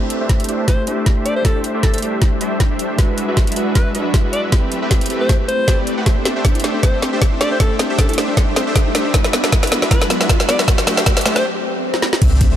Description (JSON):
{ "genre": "future bass", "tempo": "156 BPM", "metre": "4/4", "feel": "swing 54% on 16ths, half-time", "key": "unclear", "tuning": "A4 = 440 Hz", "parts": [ { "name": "mellow tine electric piano", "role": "accompaniment", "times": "0.0-6.1 s", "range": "G#3 to C5", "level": "-25 LUFS", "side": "right 2 dB", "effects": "slow stereo tremolo, sidechain pumping, ping-pong delay" }, { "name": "ethereal airy pad", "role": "sustained chords", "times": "0.0-12.6 s", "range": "F#3 to C5", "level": "-28 LUFS", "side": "left 2 dB", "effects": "ensemble chorus, built-in reverb, sidechain pumping" }, { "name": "supersaw chords", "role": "riff", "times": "0.0-12.6 s", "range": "G#3 to F#5", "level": "-22 LUFS", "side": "equal", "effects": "sidechain pumping, low-pass filter" }, { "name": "riser, swell and impact", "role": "sound effects", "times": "0.0-12.6 s", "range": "none", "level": "-29 LUFS", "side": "right 1 dB", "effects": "none" }, { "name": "trap drum kit", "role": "drums", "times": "0.1-12.5 s", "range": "crash cymbal, hi-hat, snare drum", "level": "-20 LUFS", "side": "equal", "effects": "none" }, { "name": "electronic kick drum", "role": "drums", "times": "0.3-12.5 s", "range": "none", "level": "-15 LUFS", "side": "equal", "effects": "overdrive" }, { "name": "bright alto saxophone", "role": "melody", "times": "0.7-11.4 s", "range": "A4 to D5", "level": "-24 LUFS", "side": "left 1 dB", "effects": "vintage 12-bit sampler grit, sidechain pumping, ping-pong delay" }, { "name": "thumb-piano-like synth pluck", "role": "arpeggios", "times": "6.1-12.4 s", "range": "G#3 to E4", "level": "-27 LUFS", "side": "equal", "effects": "chorus, sidechain pumping, ping-pong delay" }, { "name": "warm 808-style bass", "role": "bass", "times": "12.2-12.6 s", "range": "C2", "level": "-14 LUFS", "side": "equal", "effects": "tube saturation, sidechain pumping" } ], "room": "light reverb", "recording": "none", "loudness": "-14 LUFS", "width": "side -11 dB against mid", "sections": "0.0-12.2 A section", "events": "build-up 0.0-12.2; drum fill 0.0-11.4, 11.9; filter sweep on supersaw synth 0.0-12.2; filter sweep on ambient pad 0.0-12.2; break 11.4-12.2; swell 11.4-12.2; impact 12.2-12.6", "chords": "0.0 C69; 1.3 D9sus4; 3.0 E9; 4.5 Am9; 6.1 C69; 7.4 D9sus4; 9.1 E9; 10.7 Am9" }